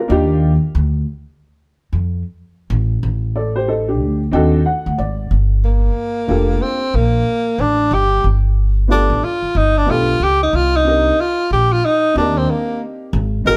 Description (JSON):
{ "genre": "hip hop", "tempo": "92 BPM", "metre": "4/4", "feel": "swing 62% on 16ths", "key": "G minor", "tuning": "A4 = 439 Hz", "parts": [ { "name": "dark upright piano", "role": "accompaniment", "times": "0.0-13.6 s", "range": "Bb3 to G5", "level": "-22 LUFS", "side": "equal", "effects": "none" }, { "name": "upright bass", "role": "bass", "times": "0.1-13.6 s", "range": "F1 to F2", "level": "-19 LUFS", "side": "equal", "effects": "none" }, { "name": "breathy tenor saxophone", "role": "melody", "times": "5.6-13.6 s", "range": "Bb3 to Bb4", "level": "-18 LUFS", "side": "equal", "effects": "none" } ], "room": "moderate stone room reverb, RT60 1.2 s", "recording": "band playing live in one room", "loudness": "-17 LUFS", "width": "mono", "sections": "0.0-5.3 A section; 5.3-13.6 B section", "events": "upright piano fill 4.0-5.3; tenor saxophone solo 5.3-13.6", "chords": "0.1 Ebmaj9; 2.7 A7(b5, no3); 4.0 D7b9; 5.3 Gm7; 7.9 G7; 10.5 Cm7", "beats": "| 0.10 0.75 1.40 2.06 | 2.71 3.36 4.01 4.67 | 5.32 5.97 6.62 7.27 | 7.92 8.58 9.23 9.88 | 10.53 11.19 11.84 12.49 | 13.14" }